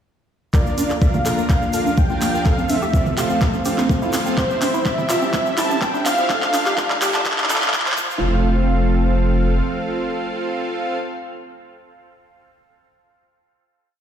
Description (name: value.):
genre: progressive house.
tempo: 125 BPM.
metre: 4/4.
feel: straight.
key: F major.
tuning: A4 = 440 Hz.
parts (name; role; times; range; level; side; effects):
wide unison lead; melody; 0.5-7.7 s; C5 to A5; -23 LUFS; equal; sidechain pumping, ping-pong delay.
airy breathy pad; sustained chords; 0.5-11.0 s; E3 to D4; -26 LUFS; right 1 dB; chorus, sidechain pumping.
wide unison pluck; arpeggios; 0.5-11.0 s; Bb3 to C5; -26 LUFS; equal; sidechain pumping, dub echo.
soft supersaw; stabs; 0.5-11.0 s; C4 to Bb5; -25 LUFS; right 2 dB; sidechain pumping, dub echo.
round analog bass; bass; 0.5-9.6 s; F1 to Bb2; -20 LUFS; equal; sidechain pumping, high-pass filter.
electronic kick drum; drums; 0.5-8.1 s; none; -18 LUFS; equal; overdrive.
pop drum kit; drums; 0.5-8.0 s; handclaps, hi-hat; -24 LUFS; equal; overdrive, sidechain pumping on hats.
egg shaker; percussion; 0.5-8.2 s; none; -36 LUFS; right 3 dB; none.
riser; sound effects; 2.6-8.2 s; none; -32 LUFS; equal; none.
electronic congas and toms; percussion; 0.8-7.7 s; none; -27 LUFS; right 3 dB; sidechain pumping on perc, sidechain pumping on toms.
room: moderate lush hall reverb, RT60 1.6 s.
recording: played on a big sound system in a bare room, stone room reverb, high-pass filter.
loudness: -17 LUFS.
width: side -8 dB against mid.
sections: 0.5-8.2 build; 8.2-12.1 final hit.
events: build-up 0.5-8.2; drum fill 0.5-8.2; filter sweep on synth pluck 0.5-8.2; filter sweep 0.5-8.2.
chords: 0.5 Bb; 2.5 F; 4.4 C; 6.3 Dm; 8.0 F.